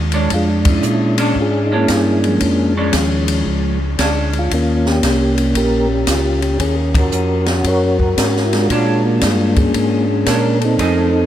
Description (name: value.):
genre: soul jazz organ trio.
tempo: 114 BPM.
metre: 4/4.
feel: swing 66% on 8ths.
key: unclear.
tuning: A4 = 441 Hz.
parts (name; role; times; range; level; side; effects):
mellow tonewheel organ; bass; 0.0-11.3 s; Bb1 to Bb2; -19 LUFS; equal; slow rotary speaker.
vintage hollow-body jazz guitar; accompaniment; 0.1-4.5, 8.7-11.1 s; F3 to G#4; -24 LUFS; right 2 dB; wide subtle chorus.
open jazz drum kit; drums; 0.1-11.0 s; hi-hat, kick drum, ride cymbal, snare drum; -20 LUFS; left 1 dB; none.
percussive tonewheel organ; melody; 0.3-11.3 s; F3 to Db5; -16 LUFS; equal; slow rotary speaker, chorus vibrato, diffuse ambient delay.
room: moderate huge ambient reverb, RT60 7.9 s.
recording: dreamy mix soaked in reverb.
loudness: -13 LUFS.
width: side -11 dB against mid.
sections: 0.0-11.3 A section.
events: band accent 0.6, 6.9.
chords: 0.0 Bb7#9; 4.5 Eb7; 6.6 Ebm7; 8.7 Bb7#9.